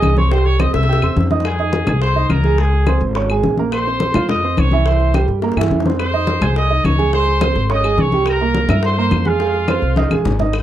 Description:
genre	latin, salsa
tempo	211 BPM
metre	4/4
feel	straight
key	F minor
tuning	A4 = 439 Hz
part	bright trumpet section	melody	0.0-10.3 s	F4 to E6	-21 LUFS	left 1 dB	none
part	warm grand piano	accompaniment	0.0-10.5 s	E3 to Ab6	-20 LUFS	right 8 dB	none
part	upright bass	bass	0.0-10.6 s	Ab1 to G2	-17 LUFS	left 1 dB	none
part	bongos	percussion	0.0-10.6 s	none	-26 LUFS	left 10 dB	none
part	claves	percussion	0.0-10.6 s	none	-29 LUFS	left 7 dB	none
part	congas	percussion	0.0-10.6 s	none	-21 LUFS	left 2 dB	none
room	light reverb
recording	dry, close 1970s-style studio recording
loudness	-14 LUFS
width	side -12 dB against mid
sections	0.0-1.5 A section; 1.5-10.5 B section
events	drum fill 0.7-1.5, 5.4-6.0, 10.0-10.5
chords	0.3 C5; 0.9 C; 1.5 Fm7; 2.6 Db5; 3.7 Bbmadd9; 4.9 C7; 6.0 Fm7; 7.1 Db5; 8.3 C7; 9.4 Fm7

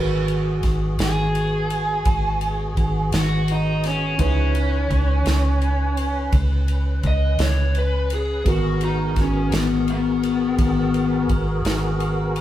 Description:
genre	slow blues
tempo	56 BPM (dotted quarters)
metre	12/8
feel	straight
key	G# minor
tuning	A4 = 440 Hz
part	dark grand piano	accompaniment	0.0-12.4 s	B3 to B4	-31 LUFS	right 4 dB	none
part	tonewheel organ	sustained chords	0.0-12.4 s	E#3 to B4	-31 LUFS	equal	overdrive, chorus vibrato, slow rotary speaker
part	vintage muted fingered electric bass	bass	0.0-12.4 s	G#1 to C#2	-21 LUFS	equal	none
part	natural country drum kit	drums	0.3-12.4 s	kick drum, ride cymbal, snare drum	-26 LUFS	equal	none
part	lead guitar through a small cranked amp	melody	1.0-11.3 s	B3 to D#5	-24 LUFS	left 2 dB	overdrive
room	light reverb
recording	band playing live in one room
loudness	-18 LUFS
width	side -12 dB against mid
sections	0.0-12.4 A section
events	lead electric guitar solo 0.0-12.4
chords	0.0 G#m9; 4.2 C#m9; 8.5 G#m9

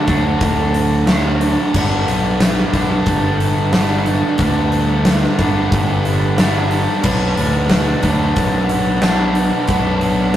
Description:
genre	classic rock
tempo	90 BPM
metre	4/4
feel	straight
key	unclear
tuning	A4 = 441 Hz
part	cranked stack guitar	riff	0.0-10.4 s	G2 to D4	-17 LUFS	right 1 dB	overdrive
part	growling fingered electric bass	bass	0.1-10.4 s	G1 to D2	-19 LUFS	equal	overdrive
part	huge arena drum kit	drums	0.1-10.4 s	crash cymbal, hi-hat, kick drum, snare drum	-18 LUFS	left 1 dB	none
room	moderate stone room reverb, RT60 1.2 s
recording	rough rehearsal-room recording, tube saturation, faint mains hum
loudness	-13 LUFS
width	side -11 dB against mid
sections	0.0-10.4 A section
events	none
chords	0.0 D; 1.7 G; 7.0 Bm

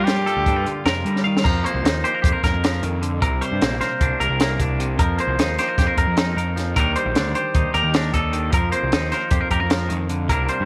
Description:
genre	math rock and midwest emo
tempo	305 BPM (eighths)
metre	9/8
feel	straight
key	unclear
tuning	A4 = 440 Hz
part	clear trumpet	melody	0.0-0.8 s	G4	-26 LUFS	equal	tape echo
part	clean electric guitar	accompaniment	0.0-10.7 s	G2 to Bb4	-28 LUFS	equal	warbly pitch drift
part	twangy electric guitar	arpeggios	0.0-10.7 s	A4 to F5	-26 LUFS	equal	none
part	fuzz picked electric bass	bass	0.0-10.7 s	Bb1 to G3	-26 LUFS	equal	overdrive
part	compact cocktail drum kit	drums	0.1-10.6 s	crash cymbal, hi-hat, kick drum, snare drum	-24 LUFS	equal	none
room	small room ambience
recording	none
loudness	-20 LUFS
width	mono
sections	0.0-1.4 A section; 1.4-10.7 B section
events	drum fill 1.1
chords	0.0 Gm7; 1.4 F7sus4; 3.2 Csus2; 5.0 F7sus4; 6.8 Ebmaj7; 8.5 F7sus4

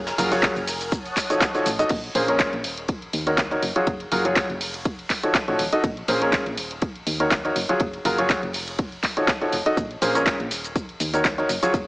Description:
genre	piano house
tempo	122 BPM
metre	4/4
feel	swing 54% on 16ths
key	Bb minor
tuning	A4 = 440 Hz
part	analog string pad	sustained chords	0.0-1.9 s	Bb4 to F6	-31 LUFS	left 1 dB	ensemble chorus, sidechain pumping
part	solid FM bass	bass	0.0-11.9 s	Eb1 to Eb2	-33 LUFS	equal	sidechain pumping
part	punchy analog drum machine	drums	0.1-11.8 s	crash cymbal, handclaps, hi-hat, shaker	-25 LUFS	equal	none
part	tight metal drum kit	drums	0.1-11.9 s	hi-hat, ride cymbal, snare drum	-36 LUFS	equal	sidechain pumping on cymbals, high-pass filter on cymbals, sidechain pumping on hats, high-pass filter on hats, high-pass filter on snare, high-pass filter on room
part	clear concert grand piano	riff	0.2-11.7 s	Bb2 to Eb5	-23 LUFS	equal	sidechain pumping, low-pass filter, dub echo
part	electronic kick drum	drums	0.4-11.8 s	none	-26 LUFS	equal	none
room	light reverb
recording	small speaker sound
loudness	-20 LUFS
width	side -23 dB against mid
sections	0.0-1.9 A section; 1.9-11.9 B section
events	drop 0.0-1.9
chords	0.0 Gbmaj9; 0.9 F7b9b13; 1.9 Bbm9; 2.6 Ebm7; 3.6 Gbmaj7sus2; 4.9 F7b9b13; 5.8 Bbm9; 6.6 Ebm7; 7.6 Gbmaj7sus2; 8.8 F7b9b13; 9.8 Bbm9; 10.5 Ebm7

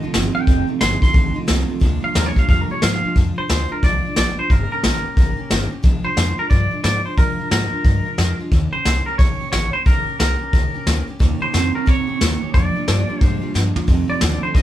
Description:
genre	rockabilly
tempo	179 BPM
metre	4/4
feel	swing 63% on 8ths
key	Bb major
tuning	A4 = 440 Hz
part	twangy electric guitar	melody	0.0-14.6 s	Bb4 to C6	-23 LUFS	equal	tremolo
part	picked steel-string acoustic guitar	accompaniment	0.0-14.6 s	F2 to G4	-28 LUFS	left 2 dB	none
part	electric guitar through a small old amp	riff	0.0-3.1, 11.2-14.6 s	F2 to C4	-24 LUFS	right 7 dB	none
part	upright bass	bass	0.0-14.6 s	F1 to Bb2	-22 LUFS	equal	none
part	vintage brush drum kit	drums	0.1-14.6 s	hi-hat, kick drum, snare drum, toms	-18 LUFS	equal	none
room	moderate studio reverb, RT60 0.6 s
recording	band playing live in one room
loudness	-16 LUFS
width	side -12 dB against mid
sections	0.0-3.2 A section; 3.2-14.6 B section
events	clean electric guitar solo 0.0-3.2; drum fill 13.5-13.9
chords	0.0 F7; 1.8 Bb7; 4.5 Eb7; 5.8 Bb7; 8.5 Eb7; 12.5 Bb7; 13.9 F7

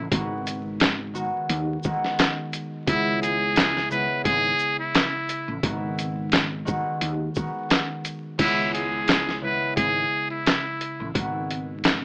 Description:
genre	hip hop, boom-bap hip-hop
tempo	87 BPM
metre	4/4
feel	swing 56% on 16ths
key	C# minor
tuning	A4 = 439 Hz
part	trumpet with metal mute	melody	0.0-11.1 s	E4 to B4	-27 LUFS	equal	none
part	concert harp	accompaniment	0.0-12.0 s	C#3 to F#4	-33 LUFS	equal	cassette tape
part	mellow fretless electric bass	bass	0.0-12.0 s	G#1 to D#2	-33 LUFS	equal	ensemble chorus
part	boom bap sampler-style drum kit	drums	0.1-12.0 s	crash cymbal, handclaps, hi-hat, kick drum, shaker, snare drum	-25 LUFS	equal	none
room	light reverb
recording	rough home demo mix, vinyl crackle, AM radio sound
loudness	-24 LUFS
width	mono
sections	0.0-8.4 A section; 8.4-12.0 B section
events	none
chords	0.1 G#m7; 2.9 C#m7; 5.6 G#m7; 8.4 C#m7; 11.2 G#m7

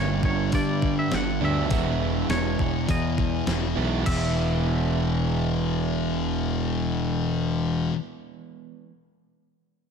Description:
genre	rock, shoegaze and dream pop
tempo	102 BPM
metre	4/4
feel	straight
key	unclear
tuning	A4 = 438 Hz
part	twangy electric guitar	melody	0.0-7.9 s	C#5 to F#5	-33 LUFS	equal	digital delay
part	overdriven semi-hollow guitar	riff	0.0-7.9 s	G2 to E4	-28 LUFS	right 11 dB	reverse reverb
part	thick fuzz guitar	riff	0.0-7.9 s	E2 to G3	-28 LUFS	left 10 dB	distortion, lush chorus
part	fuzz picked electric bass	bass	0.0-7.9 s	E1 to G2	-28 LUFS	equal	overdrive
part	gated 80s digital drum machine	drums	0.2-4.2 s	crash cymbal, hi-hat, kick drum, snare drum	-28 LUFS	equal	gated reverb, gated reverb snare, overdrive
room	light reverb, digital ambience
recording	none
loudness	-22 LUFS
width	side -6 dB against mid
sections	0.0-4.1 A section; 4.1-6.4 B section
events	none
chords	0.0 G; 1.7 E

